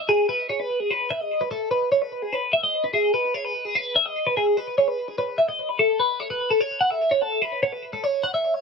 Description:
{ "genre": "rock", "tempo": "295 BPM (eighths)", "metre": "7/8", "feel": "straight", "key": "unclear", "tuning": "A4 = 439 Hz", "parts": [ { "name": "twelve-string electric guitar", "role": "solo", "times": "0.0-8.6 s", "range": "G#4 to F#5", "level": "-21 LUFS", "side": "equal", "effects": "phaser, digital delay" } ], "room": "light reverb", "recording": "nothing above 10.5 kHz", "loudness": "-21 LUFS", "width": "side -5 dB against mid", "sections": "0.1-8.6 A section", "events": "none", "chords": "none" }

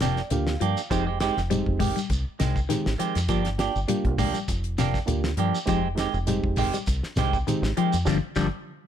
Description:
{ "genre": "afrobeat", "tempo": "101 BPM", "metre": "4/4", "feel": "swing 54% on 16ths", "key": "F dorian", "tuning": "A4 = 439 Hz", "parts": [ { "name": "reed electric piano", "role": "accompaniment", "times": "0.0-8.5 s", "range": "Ab3 to F5", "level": "-31 LUFS", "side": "right 6 dB", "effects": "none" }, { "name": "semi-hollow electric guitar", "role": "arpeggios", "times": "0.0-8.5 s", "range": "C3 to Ab3", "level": "-28 LUFS", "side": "left 8 dB", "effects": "phaser" }, { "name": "semi-hollow electric guitar", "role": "stabs", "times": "0.0-8.5 s", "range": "Eb3 to G4", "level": "-29 LUFS", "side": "right 9 dB", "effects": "wide subtle chorus" }, { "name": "deep dub fingered electric bass", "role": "bass", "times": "0.0-8.5 s", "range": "F1 to G2", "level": "-28 LUFS", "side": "equal", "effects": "none" }, { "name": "damped 70s drum kit", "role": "drums", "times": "0.0-8.5 s", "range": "hi-hat, kick drum, snare drum", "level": "-30 LUFS", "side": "equal", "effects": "none" }, { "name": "shekere", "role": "percussion", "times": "0.0-8.5 s", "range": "none", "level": "-34 LUFS", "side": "right 2 dB", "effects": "none" } ], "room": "little or no reverb", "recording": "none", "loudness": "-23 LUFS", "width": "side -9 dB against mid", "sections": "0.0-8.9 A section", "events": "reed electric piano fill 0.0-0.9; band accent 8.1-8.9", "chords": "0.0 Gm7; 0.9 Fm9; 3.3 Gm7; 5.7 Fm9; 8.1 Gm7" }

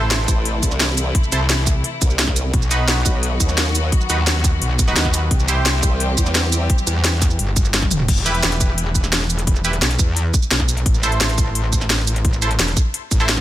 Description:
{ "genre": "dark technical drum and bass", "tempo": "173 BPM", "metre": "4/4", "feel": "straight", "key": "E harmonic minor", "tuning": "A4 = 440 Hz", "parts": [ { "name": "rich symphonic string section", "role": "sustained chords", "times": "0.0-8.1 s", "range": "C3 to G4", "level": "-27 LUFS", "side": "left 2 dB", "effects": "sidechain pumping" }, { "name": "band-passed chord stab", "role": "stabs", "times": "0.0-13.3 s", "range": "D#4 to C5", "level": "-25 LUFS", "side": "right 2 dB", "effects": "chorus, ping-pong delay" }, { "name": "metallic wobble bass", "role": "bass", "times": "0.0-13.4 s", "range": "E1 to E2", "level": "-20 LUFS", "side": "equal", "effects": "distortion, chorus, tube saturation, sidechain pumping" }, { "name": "drum and bass drum kit", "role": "drums", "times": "0.1-13.4 s", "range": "crash cymbal, hi-hat, shaker, snare drum, toms", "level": "-20 LUFS", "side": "equal", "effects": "studio reverb" }, { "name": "formant-sweep wobble bass", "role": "bass", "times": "0.3-6.7 s", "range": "A1 to E2", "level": "-20 LUFS", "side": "equal", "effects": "chorus" }, { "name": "electronic kick drum", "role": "drums", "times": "0.3-13.4 s", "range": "none", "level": "-18 LUFS", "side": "equal", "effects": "studio reverb" } ], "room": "little or no reverb", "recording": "none", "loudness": "-15 LUFS", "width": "side -13 dB against mid", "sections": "0.0-8.1 A section; 8.1-13.4 A section", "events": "drop 0.0-8.1, 8.1-13.4; drum fill 7.8", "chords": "0.0 Am; 2.5 B; 5.3 C; 8.1 Em; 10.9 Am" }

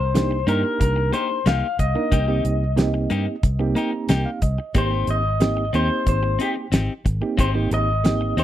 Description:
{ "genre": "straight-eighth soul blues", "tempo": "91 BPM", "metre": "4/4", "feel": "straight", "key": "C minor", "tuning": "A4 = 444 Hz", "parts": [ { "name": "electric guitar through a small old amp", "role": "melody", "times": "0.0-8.4 s", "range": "G4 to F5", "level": "-25 LUFS", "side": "left 3 dB", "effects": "spring reverb" }, { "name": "vintage muted fingered electric bass", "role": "bass", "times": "0.0-8.4 s", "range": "Ab1 to G2", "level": "-22 LUFS", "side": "equal", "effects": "none" }, { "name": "reed electric piano", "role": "accompaniment", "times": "0.1-8.4 s", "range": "Bb3 to Bb5", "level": "-26 LUFS", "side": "right 5 dB", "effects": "fast tremolo" }, { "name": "clean electric guitar", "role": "stabs", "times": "0.1-8.4 s", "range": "Bb3 to G4", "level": "-27 LUFS", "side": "left 4 dB", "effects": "none" }, { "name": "damped 70s drum kit", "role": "drums", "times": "0.2-8.4 s", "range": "hi-hat, kick drum, snare drum", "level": "-20 LUFS", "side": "equal", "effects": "none" } ], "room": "little or no reverb", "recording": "dry, close 1970s-style studio recording", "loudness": "-19 LUFS", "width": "side -12 dB against mid", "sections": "0.0-8.4 A section", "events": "reed electric piano fill 3.4-4.7", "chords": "0.0 Cm7; 4.7 Abmaj7" }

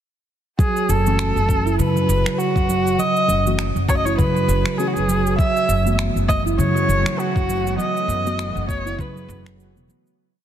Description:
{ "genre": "organic downtempo", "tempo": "100 BPM", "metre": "4/4", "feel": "swing 57% on 16ths", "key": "F# dorian", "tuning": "A4 = 441 Hz", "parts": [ { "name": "rich kamancheh", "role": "melody", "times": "0.6-9.6 s", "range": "F#4 to E5", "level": "-22 LUFS", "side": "equal", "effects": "tape echo" }, { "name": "handpan", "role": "arpeggios", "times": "0.6-10.1 s", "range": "C#3 to E4", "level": "-23 LUFS", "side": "right 3 dB", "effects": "tape echo" }, { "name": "electronic cabasa and finger snaps", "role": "drums", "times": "0.6-10.2 s", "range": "none", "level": "-30 LUFS", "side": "right 1 dB", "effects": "soft clipping on snare" }, { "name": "electronic kick drum", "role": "drums", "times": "0.6-9.1 s", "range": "none", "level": "-20 LUFS", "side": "equal", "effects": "none" }, { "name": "upright bass", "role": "bass", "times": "0.9-9.9 s", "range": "E1 to F#2", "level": "-22 LUFS", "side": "equal", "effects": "sidechain pumping" }, { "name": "muted felt-like synth keys", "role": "accompaniment", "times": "1.1-10.2 s", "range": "E3 to F#4", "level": "-28 LUFS", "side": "left 4 dB", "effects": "chorus, sidechain pumping, tape echo" }, { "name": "bowed-like drone", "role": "sustained chords", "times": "6.1-10.1 s", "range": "E3 to F#4", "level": "-32 LUFS", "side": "left 2 dB", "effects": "built-in reverb, sidechain pumping" } ], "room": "light reverb, small room ambience", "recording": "dense, heavily limited modern master", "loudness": "-17 LUFS", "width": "side -10 dB against mid", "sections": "0.6-10.2 groove", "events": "fade-out 7.0-10.2", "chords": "0.6 F#m7; 5.4 B7sus4/F#" }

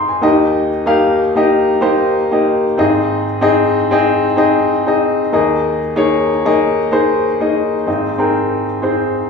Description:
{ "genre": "pop", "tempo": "94 BPM", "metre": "4/4", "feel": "swing 56% on 16ths", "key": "Ab major", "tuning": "A4 = 439 Hz", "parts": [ { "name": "warm upright piano", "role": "solo", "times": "0.0-9.3 s", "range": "Ab1 to Eb6", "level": "-12 LUFS", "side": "left 2 dB", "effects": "none" } ], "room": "wet large studio reverb, RT60 1.4 s", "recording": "band playing live in one room, studio ambience", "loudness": "-12 LUFS", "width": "side -5 dB against mid", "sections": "0.0-7.9 A section; 7.9-9.3 B section", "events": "none", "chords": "0.2 Eb; 2.8 Ab; 5.3 Ebsus4; 7.9 Ab" }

